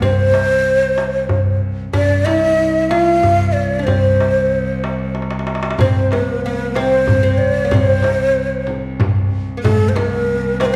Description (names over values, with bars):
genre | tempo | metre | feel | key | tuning
Arabic maqam ensemble | 94 BPM | 3/4 | straight | C maqam huzam | A4 = 441 Hz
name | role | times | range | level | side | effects
breathy ney | melody | 0.0-10.8 s | A4-46c to F5-33c | -19 LUFS | equal | none
oud | second line | 0.0-10.8 s | Ab3+50c to F4-40c | -23 LUFS | equal | none
rich cello | drone | 0.0-10.8 s | C2 | -26 LUFS | equal | none
darbuka | percussion | 0.0-10.8 s | none | -21 LUFS | equal | none
frame drum | percussion | 5.8-10.7 s | none | -24 LUFS | equal | none
room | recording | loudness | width
wet recital hall reverb, RT60 1.4 s | heard from further back in the room | -16 LUFS | mono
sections
0.0-10.8 A section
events
drum fill 5.2-5.8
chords
none